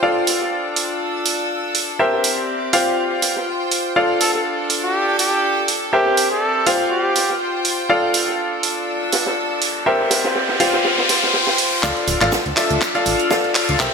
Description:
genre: piano house.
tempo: 122 BPM.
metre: 4/4.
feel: swing 56% on 16ths.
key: D minor.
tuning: A4 = 440 Hz.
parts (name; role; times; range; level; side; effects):
bright grand piano; riff; 0.0-13.9 s; F4 to F5; -20 LUFS; left 1 dB; sidechain pumping, low-pass filter, digital delay.
open jazz drum kit; drums; 0.0-13.9 s; hi-hat, shaker, snare drum; -27 LUFS; right 2 dB; high-pass filter on hats, low-pass filter on hats, high-pass filter on snare, low-pass filter on snare, high-pass filter on perc, low-pass filter on perc, high-pass filter on room, low-pass filter on room, gated reverb.
clear studio string section; texture; 0.0-13.9 s; C4 to E6; -24 LUFS; right 1 dB; sidechain pumping.
house drum kit; drums; 0.3-13.9 s; handclaps, hi-hat; -21 LUFS; right 3 dB; high-pass filter on hats, high-pass filter on cymbals, high-pass filter on snare, high-pass filter on room, gated reverb.
clear trumpet; melody; 4.2-7.4 s; G4 to A4; -20 LUFS; right 1 dB; digital delay.
riser; sound effects; 9.4-13.9 s; none; -23 LUFS; left 2 dB; none.
plucky analog bass; bass; 11.8-13.9 s; D1 to D2; -24 LUFS; equal; sidechain pumping.
electronic kick drum; drums; 11.8-13.9 s; none; -29 LUFS; equal; high-pass filter on kick, high-pass filter on room.
room: wet lush hall reverb, RT60 1.9 s, small room reverb.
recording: bright 1980s-style digital production.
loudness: -16 LUFS.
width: side -5 dB against mid.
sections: 0.0-11.8 A section; 11.8-13.9 B section.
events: riser 9.4-11.8; build-up 11.8-13.9; drum fill 11.8-13.9.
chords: 0.0 Dm; 2.0 C7; 2.7 Fsus2; 4.0 Dm; 5.9 C7; 6.7 Fsus2; 7.9 Dm; 9.9 C7; 10.6 Fsus2; 11.8 Dm.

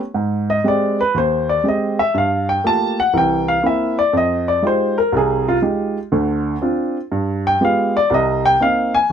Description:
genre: solo jazz.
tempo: 121 BPM.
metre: 4/4.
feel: swing 66% on 8ths.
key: unclear.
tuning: A4 = 440 Hz.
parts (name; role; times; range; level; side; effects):
warm upright piano; solo; 0.1-9.1 s; C2 to A5; -15 LUFS; equal; none.
room: light reverb.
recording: close, detailed microphones.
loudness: -15 LUFS.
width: side -8 dB against mid.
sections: 0.0-9.1 A section.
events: upright piano solo 0.0-9.1.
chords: 0.1 Abmaj7; 2.1 Gm9; 3.1 C7; 4.1 Fm9; 6.1 Dm7; 7.1 G7b9; 8.1 Cm7.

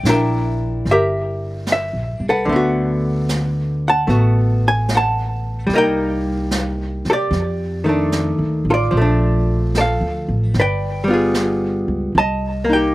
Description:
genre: jazz ballad.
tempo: 74 BPM.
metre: 4/4.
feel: swing 68% on 8ths.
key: unclear.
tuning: A4 = 441 Hz.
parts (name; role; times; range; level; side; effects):
archtop guitar, miked and amplified; accompaniment; 0.0-12.9 s; D3 to A5; -18 LUFS; equal; none.
upright bass; bass; 0.0-12.9 s; G1 to C3; -20 LUFS; equal; none.
jazz brush drum kit; drums; 0.0-12.9 s; brushed snare drum, hi-hat, snare drum; -27 LUFS; right 1 dB; none.
room: little or no reverb.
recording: none.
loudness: -16 LUFS.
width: side -17 dB against mid.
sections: 0.0-12.9 A section.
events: none.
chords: 0.0 C9 (rootless); 2.5 D6; 5.7 Cm7; 7.3 F13; 8.9 Bbmaj7; 10.5 G7b9; 12.1 Cm7.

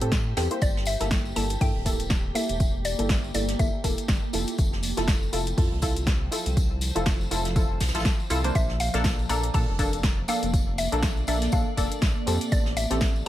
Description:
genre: deep house.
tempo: 121 BPM.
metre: 4/4.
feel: swing 56% on 16ths.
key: G dorian.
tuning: A4 = 440 Hz.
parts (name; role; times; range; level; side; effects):
mallet-like synth pluck; melody; 0.0-4.3, 8.6-13.3 s; D5 to Bb5; -33 LUFS; equal; chorus, dub echo.
filtered dub chord stab; stabs; 0.0-13.3 s; Bb3 to C5; -30 LUFS; equal; chorus, sidechain pumping, ping-pong delay.
round analog bass; bass; 0.0-13.2 s; D1 to Bb2; -29 LUFS; equal; sidechain pumping.
deep house drum kit; drums; 0.0-13.1 s; hi-hat, snare drum; -32 LUFS; left 1 dB; overdrive.
granular cloud pad; texture; 0.0-13.3 s; F3 to A5; -36 LUFS; equal; built-in reverb, sidechain pumping.
electronic kick drum; drums; 0.1-13.1 s; none; -25 LUFS; equal; overdrive.
jazz brush drum kit; drums; 0.1-13.1 s; hi-hat, snare drum, tambourine; -38 LUFS; right 1 dB; high-pass filter on hats, high-pass filter on snare, high-pass filter on perc, high-pass filter on room.
tambourine; percussion; 0.6-13.2 s; none; -38 LUFS; left 3 dB; none.
room: small room ambience.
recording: vinyl crackle.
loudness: -22 LUFS.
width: side -13 dB against mid.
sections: 0.0-13.3 A section.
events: none.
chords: 0.0 Am7; 0.6 Gm69; 4.3 Fmaj7; 8.6 Bbmaj7; 12.5 Am7.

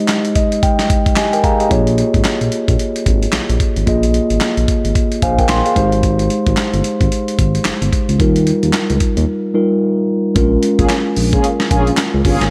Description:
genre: R&B, new jack swing.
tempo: 111 BPM.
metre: 4/4.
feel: swing 60% on 16ths.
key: Bb dorian.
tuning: A4 = 442 Hz.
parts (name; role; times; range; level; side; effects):
mellow tine electric piano; accompaniment; 0.0-12.5 s; G3 to C6; -18 LUFS; equal; none.
dusty soul sampler-style drum kit; drums; 0.1-12.5 s; handclaps, hi-hat, kick drum, snare drum; -20 LUFS; equal; none.
smooth synth bass; bass; 1.7-12.5 s; G1 to Eb2; -20 LUFS; equal; none.
mellow synth brass; stabs; 10.8-12.4 s; Bb3 to Ab4; -20 LUFS; equal; chorus, phaser, tape echo.
room: light reverb.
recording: none.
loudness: -15 LUFS.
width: mono.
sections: 0.0-10.4 A section; 10.4-12.5 B section.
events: tine electric piano fill 0.1-1.7, 5.0-6.0; break 9.3-10.4.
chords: 0.0 Abmaj7; 1.7 Bbm7; 5.8 Abmaj7; 8.2 Ebadd9; 10.4 Bbm7.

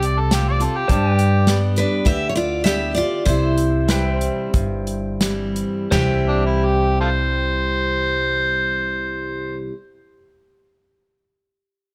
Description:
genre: honky-tonk and classic country.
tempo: 83-104 BPM.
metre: 4/4.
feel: straight.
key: C major.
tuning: A4 = 440 Hz.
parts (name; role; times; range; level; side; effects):
overdriven harmonica; second line; 0.0-1.6, 6.3-9.6 s; D4 to D5; -24 LUFS; equal; none.
picked steel-string acoustic guitar; accompaniment; 0.0-9.7 s; G2 to G4; -27 LUFS; equal; none.
pedal steel guitar; sustained chords; 0.0-9.6 s; B4 to A5; -31 LUFS; equal; none.
upright bass; bass; 0.0-9.7 s; G1 to G2; -25 LUFS; equal; none.
natural country drum kit; drums; 0.0-6.1 s; hi-hat, kick drum, snare drum, splash cymbal, toms; -23 LUFS; equal; none.
picked steel-string acoustic guitar; melody; 1.8-9.7 s; D4 to E5; -26 LUFS; equal; none.
room: little or no reverb.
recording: none.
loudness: -20 LUFS.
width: mono.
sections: 0.0-5.9 A section; 5.9-8.8 B section.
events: slowing down 0.9-5.9.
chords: 0.0 F; 0.9 G; 3.3 C.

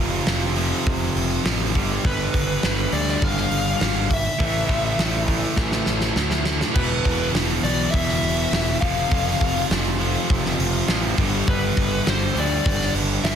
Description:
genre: hard rock.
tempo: 102 BPM.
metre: 4/4.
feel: straight.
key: E phrygian.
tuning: A4 = 440 Hz.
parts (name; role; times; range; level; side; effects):
distorted electric guitar; riff; 0.0-13.4 s; E2 to A3; -28 LUFS; right 13 dB; overdrive.
distorted electric guitar; riff; 0.0-13.4 s; E2 to A3; -30 LUFS; left 1 dB; overdrive.
overdriven semi-hollow guitar; riff; 0.0-13.4 s; E2 to A3; -29 LUFS; left 10 dB; none.
fuzz picked electric bass; bass; 0.0-13.4 s; E1 to D2; -25 LUFS; equal; overdrive.
big rock drum kit; drums; 0.3-13.4 s; crash cymbal, hi-hat, kick drum, snare drum; -23 LUFS; right 1 dB; none.
dark smooth lead guitar; melody; 2.1-13.4 s; B4 to F5; -27 LUFS; left 2 dB; overdrive, tape echo.
room: studio ambience.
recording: dense, heavily limited modern master.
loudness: -19 LUFS.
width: side -8 dB against mid.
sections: 0.0-6.8 A section; 6.8-13.4 A section.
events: drum fill 5.6-6.8.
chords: 0.0 F; 1.7 G; 4.4 A5; 6.8 E5; 8.8 F5; 11.2 G.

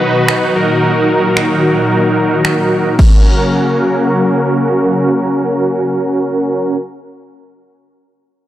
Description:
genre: dance-pop.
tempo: free time.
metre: none.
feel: none.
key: F# major.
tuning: A4 = 441 Hz.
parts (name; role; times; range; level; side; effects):
big bright polysynth; accompaniment; 0.0-6.8 s; C#4 to B4; -14 LUFS; right 2 dB; chorus, sidechain pumping, low-pass filter.
supersaw chords; sustained chords; 0.0-6.8 s; A#2 to F#4; -15 LUFS; left 2 dB; sidechain pumping, low-pass filter.
house drum kit; drums; 0.3-3.1 s; crash cymbal, finger snaps, kick drum; -13 LUFS; equal; none.
room: light reverb.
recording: dry, gritty hardware recording.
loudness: -11 LUFS.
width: side -13 dB against mid.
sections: 0.0-3.0 A section; 3.0-7.3 B section.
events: filter sweep 0.0-3.0.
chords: 0.0 B; 0.6 D#m; 3.0 F#.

